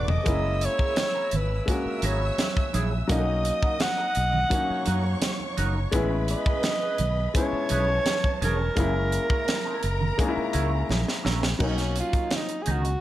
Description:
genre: lush 1970s-style soul.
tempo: 85 BPM.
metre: 4/4.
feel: straight.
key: unclear.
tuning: A4 = 440 Hz.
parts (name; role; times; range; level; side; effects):
breathy alto saxophone; melody; 0.0-13.0 s; C#4 to F#5; -28 LUFS; right 1 dB; none.
warm studio string section; second line; 0.0-11.6 s; E4 to E6; -36 LUFS; right 1 dB; none.
warm grand piano; accompaniment; 0.0-13.0 s; F#3 to A4; -31 LUFS; left 3 dB; none.
electric guitar at the edge of break-up; riff; 0.0-12.9 s; C#4 to C#5; -35 LUFS; right 3 dB; wah.
fingered electric bass; bass; 0.0-12.9 s; E1 to F#2; -26 LUFS; equal; none.
tight funk drum kit; drums; 0.1-13.0 s; crash cymbal, hi-hat, kick drum, snare drum, toms; -27 LUFS; equal; none.
congas; percussion; 0.3-12.8 s; none; -35 LUFS; right 4 dB; none.
room: light reverb, small room ambience.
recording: none.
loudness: -23 LUFS.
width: side -14 dB against mid.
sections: 0.0-11.6 A section; 11.6-13.0 B section.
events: drum fill 0.0, 10.9-11.6; alto saxophone solo 11.6-13.0.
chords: 0.3 F#9; 3.1 Bmaj7; 5.9 Amaj9; 8.8 F#7; 11.6 Bmaj9.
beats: | 0.26 0.97 1.68 2.39 | 3.10 3.81 4.52 5.23 | 5.94 6.64 7.35 8.06 | 8.77 9.48 10.19 10.90 | 11.61 12.32.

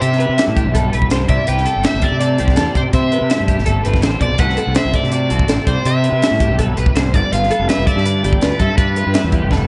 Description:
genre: math rock and midwest emo.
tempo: 164 BPM.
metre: 4/4.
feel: straight.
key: C major.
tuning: A4 = 436 Hz.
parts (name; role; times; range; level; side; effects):
crunchy overdriven guitar; melody; 0.0-9.5 s; A4 to G5; -23 LUFS; equal; diffuse ambient delay.
twelve-string electric guitar; accompaniment; 0.0-9.7 s; G2 to B4; -27 LUFS; equal; none.
twelve-string electric guitar; arpeggios; 0.0-9.7 s; F#4 to E5; -25 LUFS; equal; ensemble chorus, diffuse ambient delay.
fuzz fingered electric bass; bass; 0.0-9.7 s; F1 to C3; -20 LUFS; equal; overdrive.
crisp fusion drum kit; drums; 0.0-9.6 s; hi-hat, kick drum, snare drum; -20 LUFS; equal; none.
room: moderate plate reverb, RT60 1.1 s, small room ambience.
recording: dreamy mix soaked in reverb, nothing above 11.0 kHz.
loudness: -16 LUFS.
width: mono.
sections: 0.0-9.7 A section.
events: drum fill 9.5.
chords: 0.0 Cmaj7; 1.3 Am7; 4.4 D7/C; 5.7 Cmaj7; 7.1 G7.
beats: | 0.02 0.38 0.75 1.11 | 1.48 1.84 2.21 2.57 | 2.94 3.30 3.67 4.03 | 4.40 4.76 5.13 5.49 | 5.86 6.22 6.59 6.95 | 7.32 7.68 8.05 8.41 | 8.78 9.14 9.51.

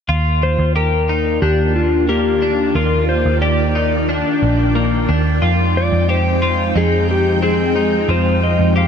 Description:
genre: dream pop.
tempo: 90 BPM.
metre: 4/4.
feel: straight.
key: Eb major.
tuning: A4 = 438 Hz.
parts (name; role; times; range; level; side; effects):
string machine, full ensemble; sustained chords; 0.1-8.9 s; Eb3 to G5; -20 LUFS; right 1 dB; ensemble chorus.
twelve-string electric guitar; arpeggios; 0.1-8.9 s; Bb3 to G4; -20 LUFS; left 3 dB; wide subtle chorus, digital delay.
vintage muted picked electric bass; bass; 0.1-8.9 s; Bb1 to F2; -18 LUFS; right 1 dB; none.
clean lap steel guitar; melody; 0.4-8.9 s; F4 to F5; -20 LUFS; left 3 dB; digital delay.
room: light reverb.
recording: dark, warm production.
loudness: -14 LUFS.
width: side -7 dB against mid.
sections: 0.1-8.9 A section.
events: none.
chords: 0.1 Ebmaj7; 5.4 Fm7.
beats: | 0.09 0.76 1.42 2.09 | 2.76 3.42 4.09 4.76 | 5.42 6.09 6.76 7.42 | 8.09 8.76.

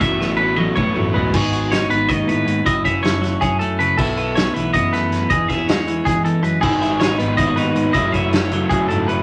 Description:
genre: math rock and midwest emo.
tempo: 318 BPM (eighths).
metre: 7/8.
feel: straight.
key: unclear.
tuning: A4 = 441 Hz.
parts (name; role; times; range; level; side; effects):
twelve-string electric guitar; accompaniment; 0.0-9.2 s; E2 to G#4; -23 LUFS; equal; none.
twangy electric guitar; arpeggios; 0.0-9.2 s; G#4 to E5; -23 LUFS; equal; none.
raw garage guitar; riff; 0.0-1.3, 6.6-9.2 s; F#2 to A4; -25 LUFS; equal; overdrive.
fuzz fingered electric bass; bass; 0.0-9.2 s; F#1 to E3; -27 LUFS; equal; overdrive.
loose indie drum kit; drums; 0.0-9.2 s; crash cymbal, hi-hat, kick drum, snare drum, toms; -25 LUFS; equal; none.
room: moderate studio reverb, RT60 0.5 s.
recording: none.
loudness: -18 LUFS.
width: mono.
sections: 0.0-1.3 A section; 1.3-9.2 B section.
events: drum fill 0.2-1.3.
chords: 0.0 F#m11/A; 1.3 G#m7; 2.7 F#m7; 4.0 B7sus4; 5.3 E6; 6.6 G#m7; 7.9 F#m7.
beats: | 0.01 0.20 0.39 0.58 0.77 0.96 1.15 | 1.34 1.53 1.72 1.91 2.10 2.28 2.47 | 2.66 2.85 3.04 3.23 3.42 3.60 3.79 | 3.98 4.17 4.36 4.55 4.74 4.93 5.12 | 5.30 5.49 5.68 5.87 6.06 6.25 6.44 | 6.63 6.82 7.00 7.19 7.38 7.57 7.76 | 7.95 8.14 8.33 8.51 8.70 8.89 9.08.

